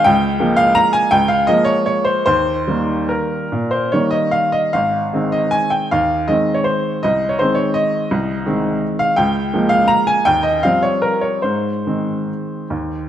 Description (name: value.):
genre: classical, piano waltz.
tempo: 139-180 BPM.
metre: 3/4.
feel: rubato.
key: Ab major.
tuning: A4 = 441 Hz.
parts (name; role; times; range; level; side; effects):
clear upright piano; solo; 0.0-13.1 s; Ab1 to Bb5; -14 LUFS; equal; none.
room: moderate scoring stage reverb, RT60 1.9 s.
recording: dark, warm production.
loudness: -14 LUFS.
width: side -10 dB against mid.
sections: 0.0-13.1 A section.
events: none.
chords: 0.0 Bbm7/Db; 2.3 Eb; 4.7 Ab; 7.0 Ab/C; 9.2 Bbm7/Db; 10.3 Eb69; 11.4 Ab.